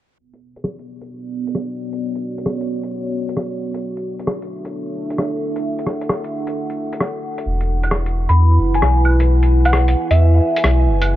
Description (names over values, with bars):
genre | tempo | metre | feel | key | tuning
future garage | 132 BPM | 4/4 | swing 66% on 16ths | B dorian | A4 = 444 Hz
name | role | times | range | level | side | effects
dark analog pad | sustained chords | 0.8-11.2 s | B3 to G#5 | -23 LUFS | right 1 dB | chorus, vintage 12-bit sampler grit
lo-fi sampler-style drum kit | drums | 0.3-11.1 s | claves, hi-hat, rim click | -23 LUFS | equal | small room ambience
warm sub bass | bass | 7.5-11.2 s | E1 to E2 | -14 LUFS | equal | none
soft synth bell | melody | 8.3-10.6 s | E5 to B5 | -21 LUFS | left 1 dB | chorus, tape echo
room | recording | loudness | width
light reverb | vinyl crackle, low-pass filter | -16 LUFS | side -14 dB against mid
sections
0.2-11.2 A section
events
filter sweep 0.2-11.2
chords
0.2 Bm; 3.8 Dmaj7; 7.5 E7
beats
| 0.19 0.64 1.10 1.55 | 2.01 2.46 2.92 3.37 | 3.82 4.28 4.73 5.19 | 5.64 6.10 6.55 7.01 | 7.46 7.92 8.37 8.82 | 9.28 9.73 10.19 10.64 | 11.10